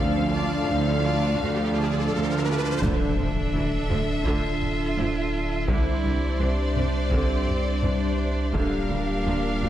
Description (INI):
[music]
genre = cinematic, hybrid orchestral and electronic film score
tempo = 84 BPM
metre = 4/4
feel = straight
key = D minor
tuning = A4 = 438 Hz
[part]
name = clear symphonic violin section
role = melody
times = 0.0-9.7 s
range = D5 to F5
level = -34 LUFS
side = left 3 dB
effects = none
[part]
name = clear symphonic violin section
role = second line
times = 0.0-9.7 s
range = A4 to A5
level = -34 LUFS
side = left 2 dB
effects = none
[part]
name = rich symphonic viola section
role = accompaniment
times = 0.0-9.7 s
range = D3 to A4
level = -34 LUFS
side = equal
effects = none
[part]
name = mellow French horn section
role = sustained chords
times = 0.0-9.7 s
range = D3 to F4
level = -37 LUFS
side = left 5 dB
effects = none
[part]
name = warbly tape-like pad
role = sustained chords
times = 0.0-9.7 s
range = D3 to F5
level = -30 LUFS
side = right 2 dB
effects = chorus, built-in reverb
[part]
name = clear studio double bass section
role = bass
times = 0.0-9.7 s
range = C2 to D2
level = -32 LUFS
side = right 3 dB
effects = none
[part]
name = rich symphonic cello section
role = bass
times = 0.0-9.7 s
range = C2 to D2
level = -30 LUFS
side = right 2 dB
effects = none
[part]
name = riser and impact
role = sound effects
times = 0.4-5.7 s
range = none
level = -31 LUFS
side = equal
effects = none
[part]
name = rich cello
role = melody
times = 2.8-9.7 s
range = C4 to F4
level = -31 LUFS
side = right 1 dB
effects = none
[part]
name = saturated sub bass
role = bass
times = 2.8-9.7 s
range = D1 to C2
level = -28 LUFS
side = equal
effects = none
[part]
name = taiko ensemble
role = drums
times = 2.8-9.2 s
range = none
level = -30 LUFS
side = equal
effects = none
[sound]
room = moderate concert hall reverb, RT60 2.2 s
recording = none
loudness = -22 LUFS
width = side -12 dB against mid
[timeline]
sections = 0.0-2.8 A section; 2.8-9.7 B section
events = riser 0.4-2.8; impact 2.8-5.7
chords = 0.0 Dm; 2.8 Dmadd9; 5.7 Cadd9; 8.5 Gm7/D